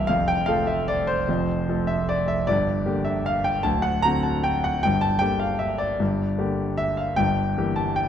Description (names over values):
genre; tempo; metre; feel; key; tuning
classical, piano waltz; 152 BPM; 3/4; uneven beats, rubato; unclear; A4 = 439 Hz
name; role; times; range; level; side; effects
warm concert grand piano; solo; 0.0-8.1 s; C1 to Bb5; -21 LUFS; equal; none
room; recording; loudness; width
moderate recital hall reverb, RT60 1.6 s; close, detailed microphones; -21 LUFS; side -9 dB against mid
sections
0.0-8.1 A section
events
none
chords
0.1 F; 2.5 Gm; 3.6 D7; 4.8 Gm; 7.2 Edim/G